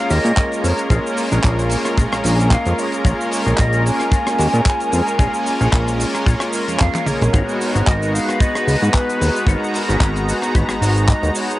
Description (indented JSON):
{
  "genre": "nu-disco, nu disco",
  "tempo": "112 BPM",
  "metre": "4/4",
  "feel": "swing 55% on 16ths",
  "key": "unclear",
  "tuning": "A4 = 438 Hz",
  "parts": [
    { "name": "mellow hollow silver concert flute", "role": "melody", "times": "0.0-11.6 s", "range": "A#4 to G#5", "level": "-24 LUFS", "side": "equal", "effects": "vintage 12-bit sampler grit, tape echo" },
    { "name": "warm analog pad", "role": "accompaniment", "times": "0.0-11.6 s", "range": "G#3 to A#5", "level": "-21 LUFS", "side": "equal", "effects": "chorus, tremolo, sidechain pumping" },
    { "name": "muted studio string section", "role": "sustained chords", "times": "0.0-11.6 s", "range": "B3 to A#5", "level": "-30 LUFS", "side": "left 1 dB", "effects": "vintage 12-bit sampler grit, sidechain pumping" },
    { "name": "electric guitar with an envelope filter", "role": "riff", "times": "0.0-11.3 s", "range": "B3 to G#5", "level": "-31 LUFS", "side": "left 7 dB", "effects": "ensemble chorus" },
    { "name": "fat analog bass", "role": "bass", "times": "0.1-11.3 s", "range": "G#1 to A#2", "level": "-18 LUFS", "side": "equal", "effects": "tube saturation" },
    { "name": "tight funk drum kit", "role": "drums", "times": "0.1-11.6 s", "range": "cabasa, handclaps, hi-hat, rim click, toms", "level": "-24 LUFS", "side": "equal", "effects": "cassette tape" },
    { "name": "kick drum", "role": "drums", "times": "0.4-11.2 s", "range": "none", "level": "-16 LUFS", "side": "equal", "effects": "cassette tape" }
  ],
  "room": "light reverb",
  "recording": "home recording on cassette, nothing above 10.9 kHz",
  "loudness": "-15 LUFS",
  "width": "side -16 dB against mid",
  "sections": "0.0-11.6 A section",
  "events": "clean electric guitar fill 2.0-3.0; drum fill 6.8-7.3",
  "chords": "0.0 A#m7; 7.3 G#m9"
}